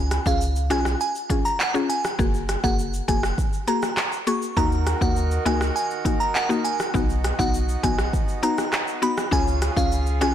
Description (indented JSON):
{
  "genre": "dancehall",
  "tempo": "101 BPM",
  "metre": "4/4",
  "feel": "straight",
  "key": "F# major",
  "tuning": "A4 = 439 Hz",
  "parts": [
    { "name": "glassy synth bell", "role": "melody", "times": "0.0-10.3 s", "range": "E#5 to C#6", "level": "-27 LUFS", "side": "right 2 dB", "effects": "chorus, tremolo, ping-pong delay" },
    { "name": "mallet-like synth pluck", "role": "accompaniment", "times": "0.0-10.3 s", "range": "A#3 to G#4", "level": "-26 LUFS", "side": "left 5 dB", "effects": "chorus, sidechain pumping" },
    { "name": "punchy sub bass", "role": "bass", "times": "0.0-10.3 s", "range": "E#1 to D#2", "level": "-25 LUFS", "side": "equal", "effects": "none" },
    { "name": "afro-pop drum kit", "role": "drums", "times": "0.1-10.3 s", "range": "handclaps, hi-hat, kick drum, rim click, shaker", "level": "-25 LUFS", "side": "equal", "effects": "soft clipping on snare" },
    { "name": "accordion", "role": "sustained chords", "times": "4.6-10.3 s", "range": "C#3 to A#4", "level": "-32 LUFS", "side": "right 4 dB", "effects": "sidechain pumping" }
  ],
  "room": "light reverb, digital ambience",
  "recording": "blown-out, overdriven recording, overdrive",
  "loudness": "-20 LUFS",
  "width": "side -10 dB against mid",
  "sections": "0.0-10.3 A section",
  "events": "none",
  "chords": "0.0 C#; 2.2 F#add9; 4.6 D#m; 6.9 B; 9.3 C#",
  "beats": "0.41 1.01 1.60 | 2.19 2.79 3.38 3.98 | 4.57 5.17 5.76 6.35 | 6.95 7.54 8.13 8.73 | 9.32 9.92"
}